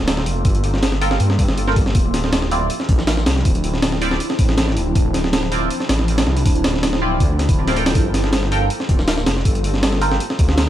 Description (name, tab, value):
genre	drum and bass, jungle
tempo	160 BPM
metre	4/4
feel	straight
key	G dorian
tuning	A4 = 440 Hz
part	detuned saw bass	bass	0.0-10.7 s	D1 to G2	-20 LUFS	equal	none
part	breakbeat sampler-style drum kit	drums	0.1-10.7 s	hi-hat, kick drum, snare drum	-18 LUFS	equal	studio ambience
part	band-passed chord stab	stabs	1.0-10.2 s	C4 to G5	-25 LUFS	right 2 dB	phaser, wide subtle chorus, dub echo
room	little or no reverb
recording	vinyl crackle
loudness	-15 LUFS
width	side -12 dB against mid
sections	0.0-10.7 A section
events	none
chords	0.0 Gm9; 2.0 Dm9; 8.0 Gm9